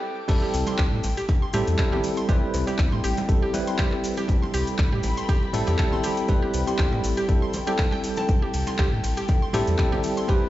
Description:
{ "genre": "deep house", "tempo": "120 BPM", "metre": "4/4", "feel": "swing 54% on 16ths", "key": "A minor", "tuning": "A4 = 440 Hz", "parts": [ { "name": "airy breathy pad", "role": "sustained chords", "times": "0.0-10.5 s", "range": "A4 to D6", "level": "-34 LUFS", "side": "left 2 dB", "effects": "chorus, phaser, sidechain pumping" }, { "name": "barky tine electric piano", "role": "stabs", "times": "0.3-10.5 s", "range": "G3 to B4", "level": "-27 LUFS", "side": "equal", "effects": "medium stereo tremolo, sidechain pumping, dub echo" }, { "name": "sub bass with octave", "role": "bass", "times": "0.3-10.4 s", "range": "A1 to A2", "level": "-26 LUFS", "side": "equal", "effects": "sidechain pumping" }, { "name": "deep house drum kit", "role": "drums", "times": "0.3-10.4 s", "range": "crash cymbal, handclaps, hi-hat, ride cymbal", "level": "-34 LUFS", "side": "equal", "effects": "high-pass filter on snare, high-pass filter on hats, high-pass filter on cymbals" }, { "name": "electronic kick drum", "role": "drums", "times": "0.3-10.4 s", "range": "none", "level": "-22 LUFS", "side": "equal", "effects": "high-pass filter on kick" }, { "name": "congas", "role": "percussion", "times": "0.3-10.4 s", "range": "none", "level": "-36 LUFS", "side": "right 3 dB", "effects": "none" }, { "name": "maracas", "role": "percussion", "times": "0.3-10.4 s", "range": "none", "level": "-41 LUFS", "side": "left 2 dB", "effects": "none" }, { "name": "mallet-like synth pluck", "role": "arpeggios", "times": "0.4-10.4 s", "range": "G4 to C6", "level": "-32 LUFS", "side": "right 2 dB", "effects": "chorus, cassette tape, sidechain pumping, dub echo" } ], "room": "light reverb, digital ambience", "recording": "played on a big sound system in a bare room, stone room reverb, nothing above 7.8 kHz", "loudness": "-21 LUFS", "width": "side -14 dB against mid", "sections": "0.3-10.5 A section", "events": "break 0.0; drop 0.3-10.5", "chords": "0.3 Am7" }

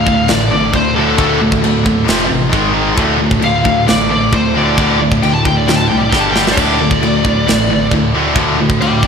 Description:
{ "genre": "heavy metal", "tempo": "134 BPM", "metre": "4/4", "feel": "straight", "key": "D phrygian", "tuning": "A4 = 440 Hz", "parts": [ { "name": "high-gain lead guitar", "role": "melody", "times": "0.0-9.1 s", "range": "A4 to A5", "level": "-17 LUFS", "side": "left 2 dB", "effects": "distortion, slapback echo, tape echo" }, { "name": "heavy high-gain guitar", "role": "riff", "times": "0.0-9.1 s", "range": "D2 to G#3", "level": "-20 LUFS", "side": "equal", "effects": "distortion, slapback echo" }, { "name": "high-gain distorted guitar", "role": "riff", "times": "0.0-9.1 s", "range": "D2 to G#3", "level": "-18 LUFS", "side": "right 10 dB", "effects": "distortion" }, { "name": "tight distorted guitar", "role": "riff", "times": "0.0-9.1 s", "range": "D2 to G#3", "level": "-17 LUFS", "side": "left 7 dB", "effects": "distortion, slapback echo" }, { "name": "bell-like tine electric piano", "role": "bass", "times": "0.0-9.1 s", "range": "E1 to Eb2", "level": "-19 LUFS", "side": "equal", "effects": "medium stereo tremolo" }, { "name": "tight metal drum kit", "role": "drums", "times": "0.1-9.1 s", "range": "china cymbal, crash cymbal, kick drum, snare drum", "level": "-18 LUFS", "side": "equal", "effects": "none" } ], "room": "moderate lush hall reverb, RT60 2.0 s", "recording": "big arena sound", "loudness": "-10 LUFS", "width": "side -6 dB against mid", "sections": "0.0-9.1 A section", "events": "lead electric guitar solo 0.0-9.1; drum fill 6.1-6.6", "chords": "0.0 D5; 2.1 F5; 2.5 G#5; 3.0 D5; 6.1 G5; 6.6 D5" }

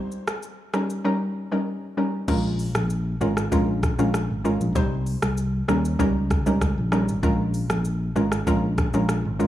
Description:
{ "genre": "afrobeats", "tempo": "97 BPM", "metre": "4/4", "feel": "straight", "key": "Bb dorian", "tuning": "A4 = 440 Hz", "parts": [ { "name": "hollow square pluck", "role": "accompaniment", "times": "0.0-9.5 s", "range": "G3 to C5", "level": "-24 LUFS", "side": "equal", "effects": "chorus" }, { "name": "afro-pop drum kit", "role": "drums", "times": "0.1-9.5 s", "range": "crash cymbal, hi-hat, kick drum, rim click, shaker", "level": "-27 LUFS", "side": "equal", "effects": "none" }, { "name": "fingered electric bass", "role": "bass", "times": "2.3-9.5 s", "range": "Ab1 to Eb2", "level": "-25 LUFS", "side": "equal", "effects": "none" } ], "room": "light reverb, digital ambience", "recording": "small room reverb", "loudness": "-21 LUFS", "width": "side -13 dB against mid", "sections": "0.0-2.3 A section; 2.3-9.5 B section", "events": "none", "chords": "0.0 Cm; 0.7 Eb7; 2.3 Bbm7; 4.8 Cm; 5.7 Eb7; 7.2 Bbm7" }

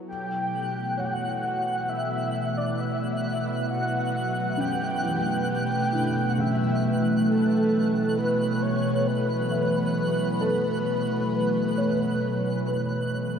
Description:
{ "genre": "ambient", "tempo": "66 BPM", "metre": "4/4", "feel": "straight", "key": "unclear", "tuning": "A4 = 439 Hz", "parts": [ { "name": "glassy FM pad", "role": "sustained chords", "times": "0.0-13.4 s", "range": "B2 to B4", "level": "-25 LUFS", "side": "right 1 dB", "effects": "ensemble chorus, built-in reverb" }, { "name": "felt-muted upright piano", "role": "arpeggios", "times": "0.0-13.4 s", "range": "C#3 to E5", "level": "-35 LUFS", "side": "left 2 dB", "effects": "diffuse ambient delay" }, { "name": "bowed-like drone", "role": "drone", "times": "0.0-13.4 s", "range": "F#3 to B3", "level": "-38 LUFS", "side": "left 2 dB", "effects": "none" }, { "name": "breathy flute-like synth lead", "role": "melody", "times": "0.1-13.4 s", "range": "A4 to G5", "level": "-28 LUFS", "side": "left 1 dB", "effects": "ensemble chorus, diffuse ambient delay" }, { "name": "twinkling granular texture", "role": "texture", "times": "0.6-13.4 s", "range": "F#6", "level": "-37 LUFS", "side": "right 2 dB", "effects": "built-in reverb" } ], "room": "wet huge ambient reverb, RT60 8.4 s", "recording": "dark, warm production", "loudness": "-23 LUFS", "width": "side -7 dB against mid", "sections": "0.0-13.4 A section", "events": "none", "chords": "0.1 Emadd9/B" }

